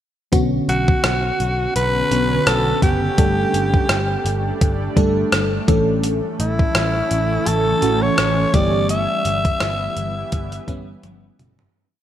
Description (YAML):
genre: 1980s-style pop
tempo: 84 BPM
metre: 4/4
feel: swing 55% on 16ths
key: E dorian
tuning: A4 = 441 Hz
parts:
  - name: FM electric piano with soft pad layer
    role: accompaniment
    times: 0.3-11.8 s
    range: D3 to A4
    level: -23 LUFS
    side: equal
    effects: chorus, phaser
  - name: granular cloud pad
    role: sustained chords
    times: 1.3-11.7 s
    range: D3 to F#5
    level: -26 LUFS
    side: equal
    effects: built-in reverb, analog chorus
  - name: vintage muted picked electric bass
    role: bass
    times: 0.3-11.7 s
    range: F#1 to B1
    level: -23 LUFS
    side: equal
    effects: none
  - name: gated 80s digital drum machine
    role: drums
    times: 0.3-11.7 s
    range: hi-hat, kick drum, rim click, toms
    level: -20 LUFS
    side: equal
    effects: gated reverb, overdrive
  - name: raspy alto saxophone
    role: melody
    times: 0.7-11.0 s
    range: E4 to E5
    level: -21 LUFS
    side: equal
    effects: digital delay
room: moderate lush hall reverb, RT60 2.8 s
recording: bright 1980s-style digital production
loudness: -16 LUFS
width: side -11 dB against mid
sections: 0.3-11.8 verse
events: fade-out 8.9-11.8; drum fill 11.0-11.8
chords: 0.3 Bmadd9; 3.2 Gsus2; 5.7 A; 8.5 Em/G